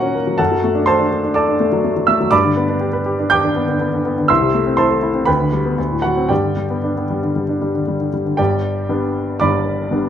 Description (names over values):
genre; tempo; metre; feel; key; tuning
classical, virtuoso piano study; 111-127 BPM; 4/4; rubato; G major; A4 = 440 Hz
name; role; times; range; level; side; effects
clear grand piano; solo; 0.0-10.1 s; G1 to G6; -15 LUFS; equal; none
room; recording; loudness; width
moderate large studio reverb, RT60 1.1 s; none; -15 LUFS; side -9 dB against mid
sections
0.0-8.4 A section; 8.4-10.1 B section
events
none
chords
0.4 D/F#; 2.3 G; 4.3 Am/C; 5.3 G/D; 5.8 D7; 6.3 G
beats
| 0.39 0.87 1.35 1.84 | 2.32 2.81 3.31 3.81 | 4.30 4.78 5.27 5.78 | 6.30 6.84 7.36 7.88 | 8.39 8.89 9.41 9.91